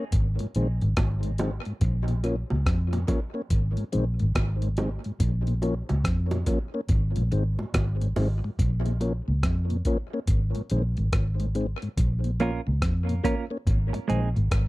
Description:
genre	dub reggae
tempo	71 BPM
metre	4/4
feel	swing 63% on 16ths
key	Bb minor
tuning	A4 = 441 Hz
part	mellow tonewheel organ	accompaniment	0.0-14.4 s	Ab2 to Db4	-31 LUFS	left 2 dB	slow rotary speaker, tape echo
part	vintage muted fingered electric bass	bass	0.1-14.7 s	Ab1 to F2	-25 LUFS	equal	none
part	breakbeat sampler-style drum kit	drums	0.1-14.7 s	hi-hat, kick drum, rim click	-27 LUFS	equal	none
part	bongos	percussion	1.0-9.3 s	none	-36 LUFS	right 2 dB	tape echo
part	clean electric guitar	accompaniment	12.4-14.3 s	Ab3 to Bb4	-30 LUFS	right 5 dB	tape echo
room	little or no reverb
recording	dry, close 1970s-style studio recording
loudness	-24 LUFS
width	side -19 dB against mid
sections	0.0-14.7 A section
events	break 0.0-12.0; part muted 8.6-14.7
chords	0.1 Ab; 1.8 Bbm; 3.5 Ab; 5.2 Bbm; 6.9 Ab; 8.6 Bbm; 10.3 Ab; 12.0 Bbm; 13.7 Ab

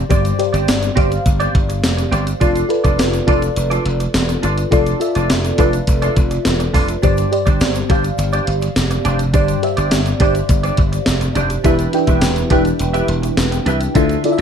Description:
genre	1980s-style pop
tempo	104 BPM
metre	4/4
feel	straight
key	unclear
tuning	A4 = 439 Hz
part	FM electric piano with soft pad layer	accompaniment	0.0-14.4 s	G2 to G5	-19 LUFS	left 1 dB	chorus, tremolo
part	slap bass	bass	0.0-14.4 s	E1 to D2	-19 LUFS	equal	none
part	clean electric guitar	riff	0.1-14.4 s	C4 to E5	-23 LUFS	right 3 dB	analog chorus, ping-pong delay
part	gated 80s digital drum machine	drums	0.1-14.4 s	hi-hat, kick drum, snare drum, tambourine	-18 LUFS	equal	gated reverb, gated reverb snare
part	egg shaker	percussion	0.1-14.2 s	none	-38 LUFS	left 8 dB	none
room	light reverb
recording	dark, warm production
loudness	-14 LUFS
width	side -8 dB against mid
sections	0.0-14.4 A section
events	none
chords	0.0 Gsus4; 2.4 Dm; 7.0 Gsus4; 11.6 Em7

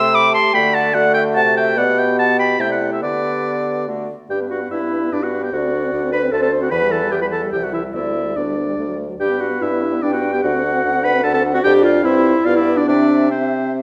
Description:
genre	quick classical-period movement for wind quintet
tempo	146 BPM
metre	3/4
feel	rubato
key	G major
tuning	A4 = 441 Hz
part	concert flute	melody	0.0-13.8 s	B4 to C6	-27 LUFS	equal	none
part	clear oboe	second line	0.0-13.7 s	C5 to E6	-23 LUFS	equal	none
part	dark clarinet	accompaniment	0.0-13.7 s	C4 to B4	-22 LUFS	equal	none
part	warm French horn	accompaniment	0.0-13.8 s	E3 to D4	-26 LUFS	equal	none
part	clear bassoon	bass	0.0-13.8 s	C2 to D3	-25 LUFS	equal	none
room	wet recital hall reverb, RT60 1.3 s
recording	none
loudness	-17 LUFS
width	mono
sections	0.0-4.3 A section; 4.3-13.8 B section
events	none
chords	0.0 Am7/C; 0.5 D; 1.8 G/B; 2.6 Am/C; 3.0 G/D; 3.9 D; 4.3 G; 5.5 D7; 6.7 Em; 7.5 C; 7.9 G/D; 8.8 D; 9.2 G; 10.4 D7; 11.6 Dm/F; 12.0 C/G; 12.5 G; 12.9 C

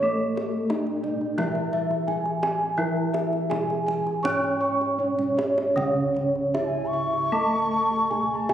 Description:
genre	Javanese gamelan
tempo	77-91 BPM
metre	4/4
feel	straight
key	C# pelog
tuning	A4 = 443 Hz
part	gamelan-type bronze metallophone	melody	0.0-8.5 s	A3 to C#5	-29 LUFS	right 2 dB	none
part	gamelan-type bronze metallophone	accompaniment	0.0-8.5 s	C#3 to C#4	-30 LUFS	left 1 dB	none
part	gamelan-type bronze metallophone	arpeggios	0.0-8.5 s	A4 to C#6	-26 LUFS	right 1 dB	none
part	gamelan-type bossed gongs	bass	0.0-8.5 s	C#2 to A4	-39 LUFS	left 1 dB	none
part	kendang	percussion	0.2-8.5 s	none	-34 LUFS	left 1 dB	none
part	bansuri	second line	6.6-8.5 s	G#5 to C#6	-26 LUFS	left 1 dB	none
room	wet recital hall reverb, RT60 1.8 s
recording	recorded on a phone in the room, club reverb, compression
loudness	-22 LUFS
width	side -10 dB against mid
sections	0.0-5.8 A section; 5.8-8.5 B section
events	drum fill 5.0-5.8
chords	none

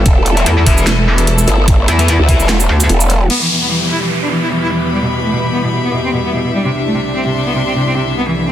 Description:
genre	heavy wobble dubstep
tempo	148 BPM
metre	4/4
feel	swing 55% on 16ths, half-time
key	E minor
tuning	A4 = 440 Hz
part	lush unison pad	sustained chords	0.0-8.5 s	C2 to B4	-21 LUFS	equal	chorus, sidechain pumping
part	metallic wobble bass	bass	0.0-2.9 s	E1 to E2	-12 LUFS	equal	distortion, chorus, overdrive
part	bright chamber string section	texture	0.0-8.5 s	B3 to C6	-21 LUFS	left 1 dB	sidechain pumping
part	growl bass	bass	0.1-3.3 s	E1 to D2	-13 LUFS	equal	chorus, overdrive
part	dubstep drum kit	drums	0.1-3.4 s	crash cymbal, handclaps, hi-hat, shaker, snare drum	-18 LUFS	right 2 dB	studio reverb
part	electronic kick drum	drums	0.1-2.4 s	none	-11 LUFS	equal	studio reverb
part	thick fuzz guitar	stabs	0.4-2.5 s	E4 to E5	-21 LUFS	left 3 dB	distortion, dub echo
part	rich cello	melody	3.3-8.5 s	B2 to E4	-16 LUFS	equal	dub echo
part	downlifter and noise sweep	sound effects	3.3-8.5 s	none	-20 LUFS	equal	none
room	light reverb, digital ambience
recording	dense, heavily limited modern master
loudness	-11 LUFS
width	side -11 dB against mid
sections	0.0-3.3 A section; 3.3-8.5 B section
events	drop 0.0-3.3; kick drops out 2.5-3.3; noise sweep 8.4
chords	0.0 Em; 6.5 Cadd9

